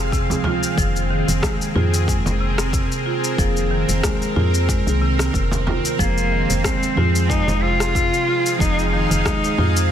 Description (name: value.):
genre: organic downtempo.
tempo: 92 BPM.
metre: 4/4.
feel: swing 54% on 16ths.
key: F minor pentatonic.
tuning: A4 = 440 Hz.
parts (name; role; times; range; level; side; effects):
bowed-like drone; sustained chords; 0.0-9.9 s; C4 to F5; -26 LUFS; right 2 dB; built-in reverb, sidechain pumping.
marimba with medium hard mallets; arpeggios; 0.0-9.9 s; C3 to F4; -25 LUFS; right 1 dB; ping-pong delay.
woody FM bass; bass; 0.0-9.9 s; F1 to F2; -21 LUFS; equal; sidechain pumping.
deep house drum kit; drums; 0.1-9.9 s; rim click, shaker, toms; -26 LUFS; left 2 dB; overdrive, small room reverb.
electronic kick drum; drums; 0.1-9.4 s; none; -23 LUFS; equal; overdrive, small room reverb.
muted felt-like synth keys; accompaniment; 0.3-9.9 s; Eb3 to Bb4; -28 LUFS; right 2 dB; chorus, sidechain pumping, ping-pong delay.
frame drum; percussion; 0.3-9.4 s; none; -29 LUFS; right 2 dB; none.
rich cello; melody; 6.0-9.9 s; Bb3 to F4; -21 LUFS; left 2 dB; ping-pong delay.
room: light reverb.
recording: dense, heavily limited modern master.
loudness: -17 LUFS.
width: side -9 dB against mid.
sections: 0.0-9.9 A section.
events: none.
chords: 0.0 Fm; 0.8 Abadd9/F; 6.0 Fm.